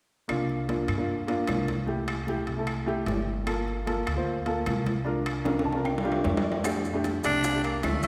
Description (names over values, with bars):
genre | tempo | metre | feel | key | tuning
Afro-Cuban jazz | 151 BPM | 4/4 | straight | unclear | A4 = 440 Hz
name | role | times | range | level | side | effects
warm baby grand piano | accompaniment | 0.3-8.0 s | A3 to A5 | -32 LUFS | equal | none
upright bass | bass | 0.3-8.1 s | G1 to G2 | -35 LUFS | equal | none
claves | percussion | 0.3-8.0 s | none | -45 LUFS | equal | none
congas | percussion | 0.3-8.1 s | none | -39 LUFS | equal | none
timbales | percussion | 0.3-8.1 s | none | -36 LUFS | equal | none
maracas | percussion | 6.6-8.1 s | none | -44 LUFS | equal | none
bongos | percussion | 6.7-8.1 s | none | -39 LUFS | equal | none
growling tenor saxophone | melody | 7.3-8.1 s | A3 to D4 | -29 LUFS | equal | none
room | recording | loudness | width
wet concert hall reverb, RT60 1.7 s | recorded in a church or concert hall | -28 LUFS | mono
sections
0.3-6.6 A section; 6.6-8.1 B section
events
drum fill 5.5-6.6; grand piano fill 5.5-6.6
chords
0.3 C7sus4; 1.9 Am7; 3.5 Gm7; 5.1 C7sus4; 6.6 F69